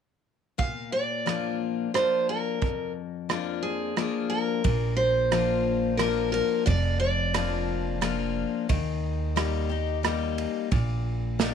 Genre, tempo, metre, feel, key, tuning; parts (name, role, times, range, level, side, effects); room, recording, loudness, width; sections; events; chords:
honky-tonk and classic country; 89 BPM; 3/4; straight; Bb mixolydian; A4 = 439 Hz
picked steel-string acoustic guitar; melody; 0.6-8.3 s; Ab4 to F5; -27 LUFS; right 1 dB
picked steel-string acoustic guitar; accompaniment; 0.6-11.5 s; F2 to G4; -29 LUFS; left 10 dB
natural country drum kit; drums; 0.6-11.5 s; kick drum, ride cymbal, rim click, snare drum; -30 LUFS; right 6 dB
upright bass; bass; 4.6-11.5 s; F1 to Eb2; -28 LUFS; right 2 dB
light reverb, small room ambience; 1960s-style stereo with parts hard left and right; -24 LUFS; side -7 dB against mid
0.6-4.6 A section; 4.6-11.5 B section
0.6 Bb; 8.7 Eb